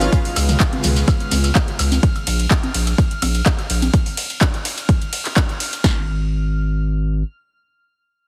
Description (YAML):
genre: progressive house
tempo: 126 BPM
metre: 4/4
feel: straight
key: unclear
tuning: A4 = 440 Hz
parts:
  - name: airy breathy pad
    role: sustained chords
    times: 0.0-2.0 s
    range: C#3 to B4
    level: -30 LUFS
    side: equal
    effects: chorus, sidechain pumping
  - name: saturated sub bass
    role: bass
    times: 0.0-7.2 s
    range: G#1 to C#2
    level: -21 LUFS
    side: equal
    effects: sidechain pumping
  - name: deep house drum kit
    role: drums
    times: 0.0-5.8 s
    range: handclaps, hi-hat, ride cymbal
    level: -26 LUFS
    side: equal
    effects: overdrive
  - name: electronic congas, woodblock and toms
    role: percussion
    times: 0.0-3.9 s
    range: none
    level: -28 LUFS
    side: equal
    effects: sidechain pumping on perc, sidechain pumping on toms
  - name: shekere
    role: percussion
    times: 0.0-2.0 s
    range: none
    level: -30 LUFS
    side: equal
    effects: none
  - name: drifting glass-harmonics texture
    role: texture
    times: 0.2-5.8 s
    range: E#6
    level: -36 LUFS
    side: equal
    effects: chorus, built-in reverb, sidechain pumping
  - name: deep house drum kit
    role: drums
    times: 0.1-6.0 s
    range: kick drum, snare drum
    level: -19 LUFS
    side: equal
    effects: overdrive
room: light reverb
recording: heavily compressed radio sound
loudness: -19 LUFS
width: mono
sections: 0.0-5.8 A section; 5.8-8.3 B section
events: drop 0.0-5.8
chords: 0.1 C#7; 2.0 A#5; 3.9 N.C.